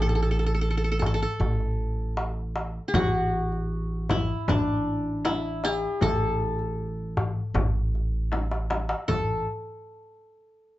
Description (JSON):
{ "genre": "Arabic maqam ensemble", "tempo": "78 BPM", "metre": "4/4", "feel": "straight", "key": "A maqam rast", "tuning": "A4 = 439 Hz", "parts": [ { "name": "qanun", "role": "melody", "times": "0.0-9.4 s", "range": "D4 to A4", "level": "-28 LUFS", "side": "left 1 dB", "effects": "plate reverb" }, { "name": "upright bass", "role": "bass", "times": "0.0-9.4 s", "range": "A1", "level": "-28 LUFS", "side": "right 1 dB", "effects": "none" }, { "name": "darbuka", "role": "percussion", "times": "0.4-9.4 s", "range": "none", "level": "-30 LUFS", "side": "left 1 dB", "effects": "none" }, { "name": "frame drum", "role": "percussion", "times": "2.9-9.4 s", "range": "none", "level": "-31 LUFS", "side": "left 3 dB", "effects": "none" } ], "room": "light reverb", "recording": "nothing above 7.8 kHz", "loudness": "-24 LUFS", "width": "side -16 dB against mid", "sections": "0.0-9.1 A section; 9.1-10.8 B section", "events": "drum fill 8.3-9.1", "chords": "none" }